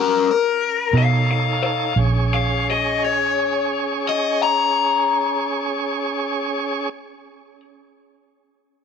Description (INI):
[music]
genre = slow blues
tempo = 58 BPM (dotted quarters)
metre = 12/8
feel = straight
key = Bb minor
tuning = A4 = 443 Hz
[part]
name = raw garage guitar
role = melody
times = 0.0-7.6 s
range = Db4 to Bb5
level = -19 LUFS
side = left 7 dB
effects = overdrive, phaser
[part]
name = bright tonewheel organ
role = sustained chords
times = 0.9-6.9 s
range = Db4 to Db5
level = -24 LUFS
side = right 3 dB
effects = slow rotary speaker, overdrive
[part]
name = vintage muted fingered electric bass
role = bass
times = 0.9-6.9 s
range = Bb1 to B2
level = -20 LUFS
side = right 2 dB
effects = none
[sound]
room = light reverb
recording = none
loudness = -18 LUFS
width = side -6 dB against mid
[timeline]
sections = 0.0-2.0 A section; 2.0-6.1 B section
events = slowing down 0.0-2.0; overdriven electric guitar solo 0.0-2.0; stop 0.0-0.9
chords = 0.0 Bbm; 0.9 B7; 2.0 Bbm7